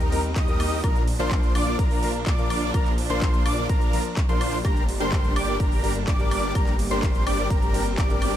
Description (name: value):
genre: EDM, festival progressive house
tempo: 126 BPM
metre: 4/4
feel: straight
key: unclear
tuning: A4 = 440 Hz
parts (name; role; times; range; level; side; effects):
- warm grand piano; accompaniment; 0.0-8.4 s; F3 to Bb4; -32 LUFS; left 6 dB; sidechain pumping, tape echo
- dark studio string section; sustained chords; 0.0-8.4 s; F3 to Eb4; -33 LUFS; right 2 dB; sidechain pumping
- wide unison lead; arpeggios; 0.0-8.4 s; Bb5 to Eb6; -30 LUFS; equal; sidechain pumping, tape echo
- dense compressed supersaw; riff; 0.0-8.4 s; D4 to Eb5; -29 LUFS; right 1 dB; sidechain pumping, tape echo
- wide detuned saw bass; bass; 0.0-8.4 s; G1 to Eb2; -29 LUFS; equal; chorus, sidechain pumping
- big-room dance drum kit; drums; 0.0-8.4 s; handclaps, hi-hat, ride cymbal, woodblock; -34 LUFS; equal; none
- electronic kick drum; drums; 0.4-8.1 s; none; -23 LUFS; equal; none
room: little or no reverb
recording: none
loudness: -20 LUFS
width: side -11 dB against mid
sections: 0.0-8.4 A section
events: none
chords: 0.0 Eb; 0.8 Bb; 4.6 Gm